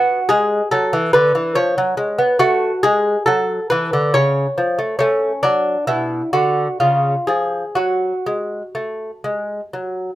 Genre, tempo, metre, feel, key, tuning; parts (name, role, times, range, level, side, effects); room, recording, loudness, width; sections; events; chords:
classical, baroque-style dance for lute; 60-73 BPM; 3/4; rubato; F# minor; A4 = 440 Hz
lute; solo; 0.0-10.2 s; B2 to C#5; -16 LUFS; equal
light reverb; -16 LUFS; side -14 dB against mid
0.0-10.2 A section
0.0 G#m7b5; 1.6 C#7/E#; 2.4 F#m; 4.1 C#; 5.0 F#m/A; 5.9 Bmadd11; 6.8 C#; 7.8 F#m